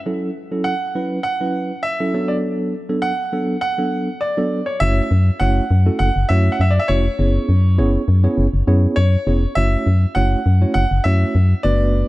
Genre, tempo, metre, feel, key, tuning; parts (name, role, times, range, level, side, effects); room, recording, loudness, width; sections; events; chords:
dance-pop; 101 BPM; 4/4; straight; F# minor; A4 = 440 Hz
tine electric piano; accompaniment; 0.1-12.1 s; F#3 to C#5; -22 LUFS; right 1 dB; medium tremolo
clear concert grand piano; melody; 0.6-12.1 s; C#5 to F#5; -22 LUFS; right 1 dB; digital delay
organ-like FM bass; bass; 4.8-12.0 s; E#1 to F#2; -15 LUFS; equal
small room ambience; dark, warm production; -15 LUFS; side -18 dB against mid
0.0-4.8 A section; 4.8-12.1 B section
build-up 0.0-4.8; drop 4.8-12.1
0.1 F#m7; 2.1 Bm7/F#; 4.8 F#m7; 7.2 C#m7/F#; 9.6 F#m7